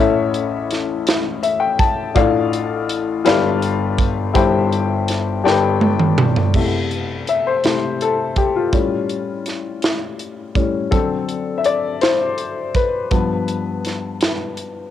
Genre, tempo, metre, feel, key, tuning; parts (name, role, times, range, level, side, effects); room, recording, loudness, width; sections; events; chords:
slow gospel; 55 BPM (dotted quarters); 6/8; straight; C major; A4 = 440 Hz
warm upright piano; accompaniment; 0.0-14.9 s; G1 to A5; -18 LUFS; left 5 dB
crisp fusion drum kit; drums; 0.3-14.7 s; crash cymbal, hi-hat, kick drum, snare drum, toms; -20 LUFS; right 2 dB
light reverb; home recording on cassette; -16 LUFS; side -10 dB against mid
0.0-6.5 A section; 6.5-14.9 B section
upright piano fill 1.1-2.2; drum fill 5.4-6.5; upright piano solo 6.5-14.9
0.0 A; 2.2 Dm/A; 3.3 G7; 4.4 C/G; 5.4 G; 6.5 C6; 8.7 A7b13; 10.9 D7; 13.1 G7